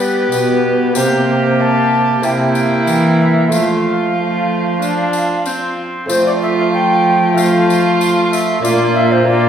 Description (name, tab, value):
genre	classical, renaissance-style consort dance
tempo	94 BPM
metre	4/4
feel	straight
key	F major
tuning	A4 = 440 Hz
part	mellow tenor recorder	melody	0.0-9.5 s	B4 to A5	-17 LUFS	left 1 dB	none
part	warm violin	second line	0.0-9.5 s	E4 to G4	-20 LUFS	right 4 dB	none
part	lute	accompaniment	0.0-9.5 s	Bb2 to G4	-23 LUFS	right 2 dB	none
part	rich viola	accompaniment	0.0-9.5 s	A3 to D4	-18 LUFS	equal	none
part	warm cello	bass	0.0-9.5 s	Bb2 to G3	-17 LUFS	equal	none
part	tambourine	percussion	0.0-8.9 s	none	-29 LUFS	left 4 dB	none
room	wet recital hall reverb, RT60 1.5 s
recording	recorded in a church or concert hall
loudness	-12 LUFS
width	side -8 dB against mid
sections	0.0-6.1 A section; 6.1-9.5 B section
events	none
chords	0.0 G; 1.0 C5; 2.2 C7; 3.5 F; 8.6 Bb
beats	0.33 | 0.96 1.60 2.24 2.88 | 3.52 4.16 4.81 5.45 | 6.09 6.73 7.37 8.01 | 8.65 9.28